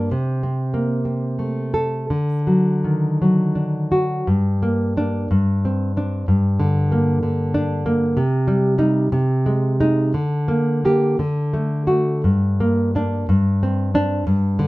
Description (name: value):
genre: romantic piece for solo classical guitar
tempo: 54-66 BPM (dotted quarters)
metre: 6/8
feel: rubato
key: G minor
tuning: A4 = 440 Hz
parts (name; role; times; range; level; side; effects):
- nylon-string guitar; solo; 0.0-14.7 s; G2 to A4; -17 LUFS; equal; none
room: moderate studio reverb, RT60 0.6 s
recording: none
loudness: -17 LUFS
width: side -19 dB against mid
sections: 0.0-4.3 A section; 4.3-14.7 B section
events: none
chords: 0.1 Am/C; 2.1 D; 4.3 Gm; 5.3 Gsus4; 6.3 Gm; 8.2 Cm; 9.1 Ab/C; 10.2 Gm/D; 11.2 D; 12.3 Gm; 13.3 Gsus4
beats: | 0.11 1.06 | 2.11 3.20 | 4.26 5.30 | 6.28 7.24 | 8.18 9.12 | 10.15 11.20 | 12.26 13.29 | 14.27